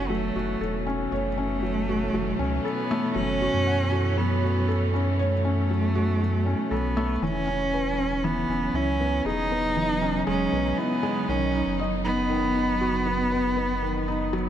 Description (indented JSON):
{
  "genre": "piano and strings electronica",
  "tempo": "118 BPM",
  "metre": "4/4",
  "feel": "straight",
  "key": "F# dorian",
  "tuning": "A4 = 439 Hz",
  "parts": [
    { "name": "warm cello", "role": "melody", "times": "0.0-14.5 s", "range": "A3 to D#4", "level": "-27 LUFS", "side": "right 1 dB", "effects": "tape echo" },
    { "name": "warm studio string section", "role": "sustained chords", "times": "0.0-14.5 s", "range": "B2 to D#4", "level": "-32 LUFS", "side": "right 2 dB", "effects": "stereo widening" },
    { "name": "felt-muted upright piano", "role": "riff", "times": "0.0-14.5 s", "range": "D#3 to F#5", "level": "-28 LUFS", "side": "left 2 dB", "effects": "tape echo" },
    { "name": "warm sub bass", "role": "bass", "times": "0.0-14.5 s", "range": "E1 to F#2", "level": "-28 LUFS", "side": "equal", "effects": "tube saturation" }
  ],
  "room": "moderate huge ambient reverb, RT60 8.8 s",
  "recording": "none",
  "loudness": "-23 LUFS",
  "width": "side -10 dB against mid",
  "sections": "0.0-14.5 A section",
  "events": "none",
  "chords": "0.0 F#m; 7.2 E6; 11.3 B",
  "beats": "0.10 0.61 | 1.12 1.63 2.13 2.64 | 3.15 3.66 4.17 4.68 | 5.18 5.69 6.20 6.71 | 7.22 7.73 8.24 8.74 | 9.25 9.76 10.27 10.78 | 11.29 11.80 12.30 12.81 | 13.32 13.83 14.34"
}